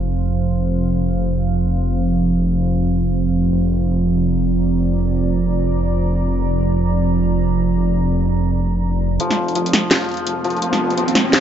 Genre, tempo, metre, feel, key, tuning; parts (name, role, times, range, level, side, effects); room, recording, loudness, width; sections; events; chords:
half-time drum and bass; free time; A4 = 440 Hz
deep dark ambient pad; sustained chords; 0.0-11.4 s; F3 to Bb5; -19 LUFS; right 2 dB; chorus, built-in reverb
dark detuned saw bass; bass; 0.0-11.4 s; Eb1 to F1; -20 LUFS; equal; high-pass filter
santur; arpeggios; 9.2-11.4 s; F3; -21 LUFS; left 3 dB; low-pass filter, digital delay
drum and bass drum kit; drums; 9.2-11.4 s; hi-hat, snare drum; -17 LUFS; equal; low-pass filter on hats, low-pass filter on snare, low-pass filter on room
riser; sound effects; 10.1-11.4 s; -24 LUFS; right 2 dB
moderate lush hall reverb, RT60 1.8 s, digital ambience; dark, warm production, nothing above 7.9 kHz; -16 LUFS; side -9 dB against mid
0.0-9.2 A section; 9.2-11.4 B section
build-up 9.2-11.4; filter sweep on ambient pad 9.2-11.4; riser 10.1-11.4
0.0 F5